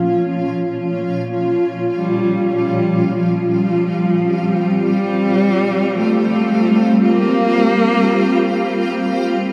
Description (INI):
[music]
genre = ambient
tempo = free time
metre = none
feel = none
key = unclear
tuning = A4 = 440 Hz
[part]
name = granular cloud pad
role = sustained chords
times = 0.0-9.5 s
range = Bb2 to G4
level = -19 LUFS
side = equal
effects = built-in reverb
[part]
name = warm cello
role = melody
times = 2.0-8.8 s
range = F3 to Bb3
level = -20 LUFS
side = equal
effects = delay
[sound]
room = wet huge ambient reverb, RT60 8.6 s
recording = none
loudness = -16 LUFS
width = mono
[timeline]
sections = 0.0-9.5 A section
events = none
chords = 0.0 Bbm; 2.5 Gm